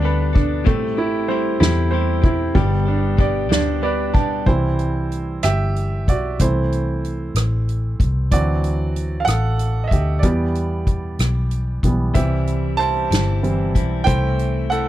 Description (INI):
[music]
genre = six-eight pop ballad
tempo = 63 BPM (dotted quarters)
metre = 6/8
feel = straight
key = unclear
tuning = A4 = 440 Hz
[part]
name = clear baby grand piano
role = accompaniment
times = 0.0-14.9 s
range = E3 to A5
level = -22 LUFS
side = right 4 dB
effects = none
[part]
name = direct-recorded clean electric guitar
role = arpeggios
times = 0.0-4.5, 12.1-14.9 s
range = G2 to A4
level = -26 LUFS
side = left 15 dB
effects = none
[part]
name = vintage muted fingered electric bass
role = bass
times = 0.0-14.9 s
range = G1 to E2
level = -21 LUFS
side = equal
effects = none
[part]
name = soft-mallet drum kit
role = drums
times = 0.1-14.9 s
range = crash cymbal, hi-hat, kick drum, ride cymbal, rim click, snare drum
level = -20 LUFS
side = equal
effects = none
[sound]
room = studio reverb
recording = none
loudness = -17 LUFS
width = side -13 dB against mid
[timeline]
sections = 0.0-4.5 A section; 4.5-14.9 B section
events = grand piano fill 3.5-4.5; grand piano solo 4.5-14.9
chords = 0.0 Gadd9; 0.7 Am7; 2.6 G; 4.5 C; 6.4 Am/C; 8.3 D7; 10.2 Em; 12.2 C; 14.1 Am/C